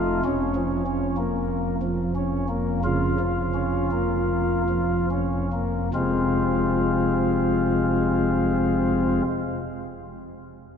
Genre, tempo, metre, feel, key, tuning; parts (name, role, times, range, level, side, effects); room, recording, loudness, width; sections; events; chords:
classical, chorale-style piece for pipe organ; 36-50 BPM; 4/4; rubato; F minor; A4 = 440 Hz
pipe organ, flutes; solo; 0.0-9.2 s; F1 to F4; -21 LUFS; equal
wet cathedral reverb, RT60 4.2 s; minimal, uncompressed stereo recording; -21 LUFS; side -7 dB against mid
0.0-5.9 A section; 5.9-10.8 B section
slowing down 0.0-5.9
0.3 Bbm/F; 5.9 Fm